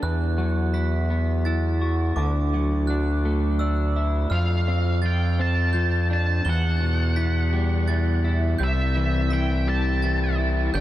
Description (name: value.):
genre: post-rock.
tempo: 56 BPM (dotted quarters).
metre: 6/8.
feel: straight.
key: unclear.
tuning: A4 = 438 Hz.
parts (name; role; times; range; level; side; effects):
glockenspiel with brass mallets; arpeggios; 0.0-10.8 s; D6 to G7; -34 LUFS; right 4 dB; diffuse ambient delay.
twelve-string electric guitar; arpeggios; 0.0-10.8 s; E2 to F#4; -27 LUFS; left 2 dB; wide subtle chorus, diffuse ambient delay.
gritty driven synth bass; bass; 0.0-10.8 s; G1 to F2; -22 LUFS; equal; none.
octave-fuzz lead guitar; melody; 4.3-10.8 s; E5 to A5; -29 LUFS; right 1 dB; distortion, diffuse ambient delay.
room: light reverb.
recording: faint mains hum.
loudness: -20 LUFS.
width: side -14 dB against mid.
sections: 0.0-4.3 A section; 4.3-10.8 B section.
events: none.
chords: 0.0 Esus2; 2.2 Dadd9; 4.3 F6; 6.5 Emadd9; 8.6 C.